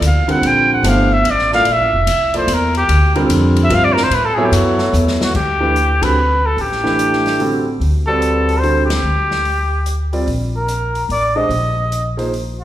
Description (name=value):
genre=modal jazz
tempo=146 BPM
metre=3/4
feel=swing 65% on 8ths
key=Bb lydian, D mixolydian from 5.3 s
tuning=A4 = 443 Hz
part: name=upright bass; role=bass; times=0.0-12.6 s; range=F1 to A2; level=-18 LUFS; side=equal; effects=none
part: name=open jazz drum kit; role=drums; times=0.0-12.5 s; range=crash cymbal, hi-hat, kick drum, ride cymbal, snare drum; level=-26 LUFS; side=left 2 dB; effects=none
part: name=warm trumpet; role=melody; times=0.1-12.6 s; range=F#4 to G5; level=-16 LUFS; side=equal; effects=none
part: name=clear concert grand piano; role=accompaniment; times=0.3-12.3 s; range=D3 to E5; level=-19 LUFS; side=right 1 dB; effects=none
room=wet recital hall reverb, RT60 1.5 s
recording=recorded in a church or concert hall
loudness=-13 LUFS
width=side -12 dB against mid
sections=0.0-5.3 A section; 5.3-12.6 B section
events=trumpet solo 0.0-5.3; drum fill 4.9-5.3; band accent 6.0, 8.8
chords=0.0 Bbmaj9; 4.1 A69; 5.3 D9sus4; 10.3 Bbsus4